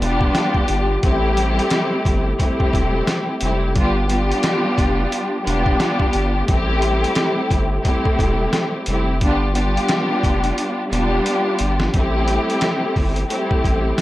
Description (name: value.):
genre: hip hop, boom-bap hip-hop.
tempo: 88 BPM.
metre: 4/4.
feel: swing 59% on 16ths.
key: A minor.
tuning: A4 = 438 Hz.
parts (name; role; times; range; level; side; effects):
warm studio string section; accompaniment; 0.0-14.0 s; G3 to G4; -19 LUFS; left 1 dB; cassette tape, high-pass filter, low-pass filter.
saturated sub bass; bass; 0.0-13.9 s; E1 to A1; -22 LUFS; equal; none.
trip hop sampler-style drum kit; drums; 0.0-14.0 s; hi-hat, kick drum, snare drum; -21 LUFS; equal; none.
room: little or no reverb.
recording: dry, gritty hardware recording, lossy compression artefacts.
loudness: -16 LUFS.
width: side -16 dB against mid.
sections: 0.0-11.9 A section; 11.9-14.0 B section.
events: drum fill 10.6-11.9.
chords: 0.0 G7; 1.0 Am7; 3.8 G7; 6.5 Am7; 9.2 G7; 11.9 Am7.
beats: 0.35 | 1.03 1.71 2.39 3.08 | 3.76 4.44 5.12 5.80 | 6.48 7.17 7.85 8.53 | 9.21 9.89 10.57 11.26 | 11.94 12.62 13.30 13.98.